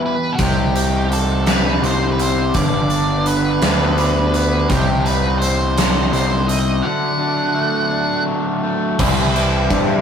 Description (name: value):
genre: indie rock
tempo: 56 BPM (dotted quarters)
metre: 6/8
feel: straight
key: unclear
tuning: A4 = 440 Hz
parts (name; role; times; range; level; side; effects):
- crunchy overdriven guitar; riff; 0.0-10.0 s; G2 to E4; -23 LUFS; left 4 dB; none
- overdriven electric guitar; riff; 0.0-10.0 s; E3 to G4; -24 LUFS; right 2 dB; none
- octave-fuzz lead guitar; melody; 0.1-8.2 s; F#4 to F#5; -22 LUFS; right 2 dB; distortion
- fuzz picked electric bass; bass; 0.4-10.0 s; G1 to G2; -18 LUFS; equal; overdrive
- big rock drum kit; drums; 0.4-9.9 s; crash cymbal, hi-hat, kick drum, ride cymbal, snare drum; -20 LUFS; right 1 dB; none
- dark analog pad; sustained chords; 9.5-10.0 s; G4 to B5; -26 LUFS; left 7 dB; chorus
room: light reverb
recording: rough rehearsal-room recording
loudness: -15 LUFS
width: side -7 dB against mid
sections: 0.4-9.0 A section; 9.0-10.0 B section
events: break 0.0-0.4, 6.8-9.0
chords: 0.4 Cm; 2.5 G; 4.7 Cm; 6.8 D; 9.0 Cmaj7